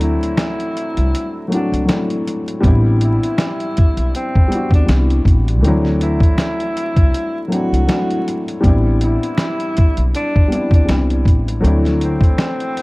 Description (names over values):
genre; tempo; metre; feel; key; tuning
lo-fi hip hop; 80 BPM; 4/4; swing 57% on 16ths; A dorian; A4 = 440 Hz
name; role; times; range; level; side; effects
breathy tenor saxophone; melody; 0.0-12.8 s; C4 to F#4; -23 LUFS; equal; low-pass filter, analog delay
dark upright piano; accompaniment; 0.0-12.8 s; E3 to F#4; -20 LUFS; left 1 dB; cassette tape, low-pass filter
upright bass; bass; 0.0-12.2 s; A1 to E2; -16 LUFS; equal; none
dusty soul sampler-style drum kit; drums; 0.0-12.8 s; finger snaps, hi-hat, kick drum, snare drum; -15 LUFS; equal; none
room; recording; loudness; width
small room reverb; dark, warm production, vinyl crackle; -14 LUFS; side -23 dB against mid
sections
0.0-12.8 A section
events
break 0.0-2.6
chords
0.0 D7; 2.6 Am11; 5.6 D7; 8.6 Am11; 11.6 D7